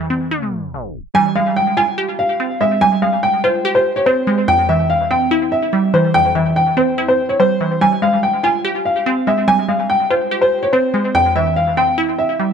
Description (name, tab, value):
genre	hip hop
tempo	144 BPM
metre	4/4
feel	half-time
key	F harmonic minor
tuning	A4 = 435 Hz
part	glassy wavetable pluck	accompaniment	0.0-12.5 s	F2 to G4	-18 LUFS	right 1 dB	chorus, tape echo
part	dark baby grand piano	melody	1.1-12.5 s	C5 to Ab5	-15 LUFS	equal	tape echo
room	moderate plate reverb, RT60 2.8 s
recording	echo-heavy mix, tape stop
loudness	-13 LUFS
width	side -7 dB against mid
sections	0.0-1.1 A section; 1.1-12.5 B section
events	tape stop 0.3-1.1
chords	0.0 C/F; 1.1 Fmadd9; 4.5 C/F; 7.8 Fmadd9; 11.1 C/F